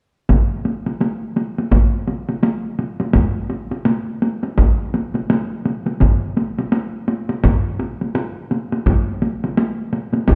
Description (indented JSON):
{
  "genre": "japanese traditional, taiko drum ensemble",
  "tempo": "84 BPM",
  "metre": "4/4",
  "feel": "swing 60% on 16ths",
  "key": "none",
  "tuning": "none",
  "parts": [
    { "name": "taiko ensemble", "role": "percussion", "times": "0.3-10.3 s", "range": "none", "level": "-22 LUFS", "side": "equal", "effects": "none" },
    { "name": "taiko ensemble", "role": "percussion", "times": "0.3-10.3 s", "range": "none", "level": "-19 LUFS", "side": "equal", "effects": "none" }
  ],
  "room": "moderate recital hall reverb, RT60 1.5 s",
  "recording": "dark, warm production",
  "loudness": "-20 LUFS",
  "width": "mono",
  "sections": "0.3-10.3 A section",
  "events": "none",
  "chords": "none"
}